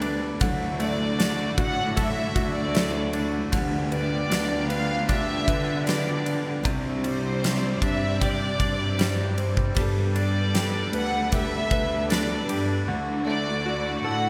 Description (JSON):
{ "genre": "pop ballad", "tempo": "77 BPM", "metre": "4/4", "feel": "straight", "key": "G major", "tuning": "A4 = 439 Hz", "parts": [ { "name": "warm studio violin section", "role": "melody", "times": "0.0-14.3 s", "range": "C5 to F#5", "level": "-32 LUFS", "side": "equal", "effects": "none" }, { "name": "bright grand piano", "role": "accompaniment", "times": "0.0-14.3 s", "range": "C3 to B4", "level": "-32 LUFS", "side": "equal", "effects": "none" }, { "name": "clear studio string section", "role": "sustained chords", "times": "0.0-14.3 s", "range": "C3 to D5", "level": "-37 LUFS", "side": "equal", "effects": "none" }, { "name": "picked steel-string acoustic guitar", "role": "arpeggios", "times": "0.0-13.4 s", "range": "C3 to A4", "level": "-36 LUFS", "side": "equal", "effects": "none" }, { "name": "warm studio cello section", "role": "bass", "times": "0.0-14.3 s", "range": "C2 to D3", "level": "-31 LUFS", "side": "equal", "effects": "none" }, { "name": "huge arena drum kit", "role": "drums", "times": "0.0-12.7 s", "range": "kick drum, ride cymbal, snare drum", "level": "-31 LUFS", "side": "equal", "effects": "gated reverb" } ], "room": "moderate plate reverb, RT60 2.0 s", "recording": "bright 1980s-style digital production", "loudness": "-25 LUFS", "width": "mono", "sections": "0.0-14.3 A section", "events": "none", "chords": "0.4 Dadd9; 3.5 G7/D; 6.6 Csus2; 9.8 Gadd9; 12.9 Dadd9" }